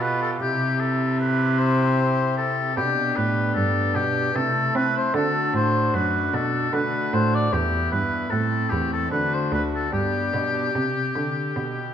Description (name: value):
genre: classical, baroque-style sonata movement with continuo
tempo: 76 BPM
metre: 3/4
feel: straight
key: G major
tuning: A4 = 440 Hz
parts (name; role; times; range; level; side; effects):
- warm oboe; melody; 0.0-11.9 s; G4 to D5; -24 LUFS; left 2 dB; none
- pipe organ, foundations; accompaniment; 0.0-11.9 s; D2 to G4; -26 LUFS; left 1 dB; none
- rich cello; bass; 0.0-11.9 s; D2 to C4; -26 LUFS; right 2 dB; none
room: wet recital hall reverb, RT60 1.4 s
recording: none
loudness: -20 LUFS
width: side -9 dB against mid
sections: 0.0-11.9 A section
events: none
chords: 0.4 C; 2.8 G; 4.4 Am/C; 5.1 D; 7.5 Em; 8.3 Am; 9.1 D; 9.9 G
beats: | 0.40 1.19 1.98 | 2.77 3.56 4.35 | 5.15 5.94 6.74 | 7.53 8.32 9.12 | 9.94 10.75 11.57